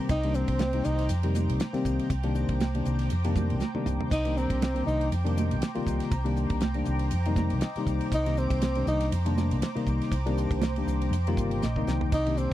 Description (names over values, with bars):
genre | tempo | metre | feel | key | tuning
electric jazz fusion | 120 BPM | 4/4 | swing 55% on 16ths | C minor | A4 = 440 Hz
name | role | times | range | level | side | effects
tine electric piano | accompaniment | 0.0-12.5 s | C3 to Bb5 | -30 LUFS | left 3 dB | lush chorus
shimmering ambient pad | sustained chords | 0.0-12.5 s | C5 to D6 | -38 LUFS | equal | chorus, built-in reverb
breathy tenor saxophone | melody | 0.1-1.1, 4.1-5.1, 8.1-9.1, 12.1-12.5 s | C4 to Eb4 | -31 LUFS | equal | tape echo
hollow-body short-scale fingered electric bass | bass | 0.1-12.5 s | G1 to F2 | -28 LUFS | equal | none
damped 70s drum kit | drums | 0.1-12.5 s | crash cymbal, hi-hat, kick drum, ride cymbal, snare drum, splash cymbal, toms | -33 LUFS | equal | none
congas | percussion | 0.1-12.2 s | none | -34 LUFS | right 6 dB | none
room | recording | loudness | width
little or no reverb | dry, close 1970s-style studio recording | -25 LUFS | side -14 dB against mid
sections
0.0-12.5 A section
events
tenor saxophone solo 0.0-12.5; drum fill 3.6-4.1, 11.6-12.1; tine electric piano fill 7.1-8.1, 11.4-12.1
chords
0.0 Cm9